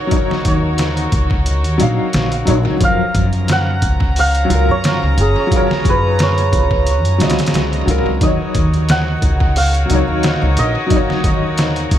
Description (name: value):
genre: trip hop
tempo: 89 BPM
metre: 4/4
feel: swing 54% on 16ths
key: Eb minor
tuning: A4 = 440 Hz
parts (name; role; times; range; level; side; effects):
- santur; melody; 0.0-12.0 s; Ab4 to Gb5; -20 LUFS; right 2 dB; tape echo
- felt-muted upright piano; accompaniment; 0.0-12.0 s; F3 to F5; -20 LUFS; left 2 dB; tremolo, vintage 12-bit sampler grit, tape echo
- warm studio violin section; sustained chords; 0.0-12.0 s; Db4 to Bb5; -25 LUFS; left 1 dB; none
- trip hop sampler-style drum kit; drums; 0.1-12.0 s; hi-hat, kick drum, snare drum; -18 LUFS; equal; overdrive, tape echo
- upright bass; bass; 0.5-12.0 s; Gb1 to Gb2; -17 LUFS; equal; none
room: small room ambience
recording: echo-heavy mix, vinyl crackle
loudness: -13 LUFS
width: side -11 dB against mid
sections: 0.0-12.0 A section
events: none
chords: 0.0 Ebm7; 2.8 Gbmaj7; 8.2 Ebm7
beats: | 0.11 0.79 1.46 2.14 | 2.81 3.48 4.16 4.83 | 5.51 6.18 6.86 7.53 | 8.20 8.88 9.55 10.23 | 10.90 11.57